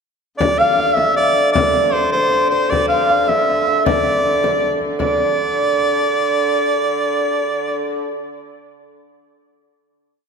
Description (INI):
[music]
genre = medieval dance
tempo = 105 BPM (dotted quarters)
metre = 6/8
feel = straight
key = D minor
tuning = A4 = 435 Hz
[part]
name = edgy shawm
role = melody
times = 0.4-8.0 s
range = C5 to F5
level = -16 LUFS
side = right 1 dB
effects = none
[part]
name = Celtic harp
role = second line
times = 0.4-8.7 s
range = C5 to F5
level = -22 LUFS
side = right 1 dB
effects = none
[part]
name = rich hurdy-gurdy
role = drone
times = 0.4-8.0 s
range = D3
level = -23 LUFS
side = left 2 dB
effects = none
[part]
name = frame drum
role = percussion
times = 0.4-5.2 s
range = none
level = -23 LUFS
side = left 4 dB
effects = none
[sound]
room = wet church reverb, RT60 2.7 s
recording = none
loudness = -14 LUFS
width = side -5 dB against mid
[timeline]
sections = 0.4-5.0 A section; 5.0-7.2 final note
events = speeding up 0.4-7.2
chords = none